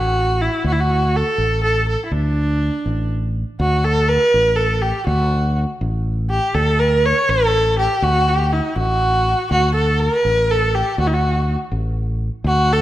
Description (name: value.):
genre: persian.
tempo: 81 BPM (dotted quarters).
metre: 6/8.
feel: straight.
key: D dastgah mahur, D dastgah chahargah from 3.6 s.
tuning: A4 = 441 Hz.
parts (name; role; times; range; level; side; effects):
clear kamancheh; melody; 0.0-12.8 s; D4 to C#5; -17 LUFS; right 1 dB; slapback echo.
fretless electric bass; bass; 0.0-12.8 s; A1 to D2; -19 LUFS; equal; none.
room: moderate recital hall reverb, RT60 1.8 s.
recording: none.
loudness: -15 LUFS.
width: side -14 dB against mid.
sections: 0.0-3.6 A section; 3.6-12.8 B section.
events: none.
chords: none.